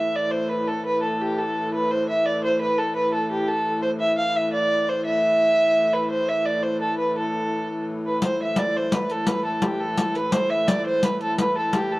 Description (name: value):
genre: medieval dance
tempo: 114 BPM (dotted quarters)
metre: 6/8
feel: straight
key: A minor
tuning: A4 = 440 Hz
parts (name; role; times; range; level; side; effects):
- dark fiddle; melody; 0.0-12.0 s; G4 to F5; -22 LUFS; right 1 dB; cassette tape
- dark hurdy-gurdy; drone; 0.0-12.0 s; A2 to E3; -28 LUFS; left 1 dB; none
- riq; percussion; 8.2-11.9 s; none; -25 LUFS; left 2 dB; none
room: light reverb, small room ambience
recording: home recording on cassette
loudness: -20 LUFS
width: side -20 dB against mid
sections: 0.0-8.2 A section; 8.2-12.0 A section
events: none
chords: none